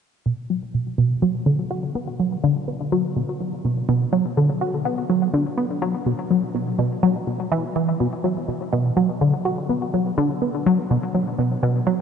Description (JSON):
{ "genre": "ambient", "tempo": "124 BPM", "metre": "4/4", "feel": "straight", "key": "B minor", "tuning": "A4 = 440 Hz", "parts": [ { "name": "tight sequenced synth", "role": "solo", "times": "0.3-12.0 s", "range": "B2 to F#4", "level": "-20 LUFS", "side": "equal", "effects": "chorus, phaser, ping-pong delay" } ], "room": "wet huge ambient reverb, RT60 8.1 s", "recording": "cassette tape, nothing above 10.6 kHz", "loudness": "-20 LUFS", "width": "side -7 dB against mid", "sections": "0.3-8.0 A section; 8.0-12.0 B section", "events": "none", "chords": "none" }